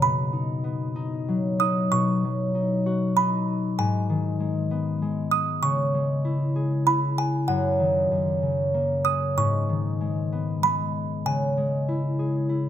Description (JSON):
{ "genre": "children's music, lullaby", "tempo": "96 BPM", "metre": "3/4", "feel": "rubato", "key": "B major", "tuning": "A4 = 442 Hz", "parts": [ { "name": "music box", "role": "melody", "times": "0.0-12.1 s", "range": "F#5 to D#6", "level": "-25 LUFS", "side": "right 5 dB", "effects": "none" }, { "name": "concert harp", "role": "accompaniment", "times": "0.0-12.7 s", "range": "F#2 to G#4", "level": "-23 LUFS", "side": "left 1 dB", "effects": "none" } ], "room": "moderate recital hall reverb, RT60 1.6 s", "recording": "close, detailed microphones", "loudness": "-22 LUFS", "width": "side -10 dB against mid", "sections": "0.0-1.9 A section; 1.9-12.7 A section", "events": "none", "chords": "0.0 B; 3.8 G#m; 5.6 C#m; 7.5 D#m/F#; 8.1 F#; 9.4 G#m; 11.3 C#m" }